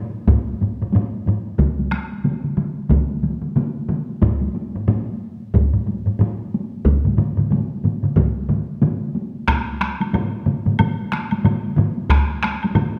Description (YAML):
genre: japanese traditional, taiko drum ensemble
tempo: 91 BPM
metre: 4/4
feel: swing 60% on 16ths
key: none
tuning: none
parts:
  - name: taiko ensemble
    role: percussion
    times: 0.1-12.9 s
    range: none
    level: -26 LUFS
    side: equal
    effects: none
  - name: taiko ensemble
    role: percussion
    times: 0.3-12.9 s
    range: none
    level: -24 LUFS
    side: equal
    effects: none
  - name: taiko ensemble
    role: percussion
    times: 0.3-12.3 s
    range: none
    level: -22 LUFS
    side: equal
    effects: none
  - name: taiko ensemble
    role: percussion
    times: 1.6-12.9 s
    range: none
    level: -25 LUFS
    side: equal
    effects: none
  - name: woodblock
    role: percussion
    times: 9.5-12.9 s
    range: none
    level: -33 LUFS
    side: equal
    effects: none
room: moderate recital hall reverb, RT60 1.7 s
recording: none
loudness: -20 LUFS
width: mono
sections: 0.0-9.5 A section; 9.5-13.0 B section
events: none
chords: none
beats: 0.28 0.94 | 1.59 2.25 2.91 3.57 | 4.22 4.88 5.54 6.20 | 6.85 7.51 8.17 8.82 | 9.48 10.14 10.79 11.45 | 12.10 12.76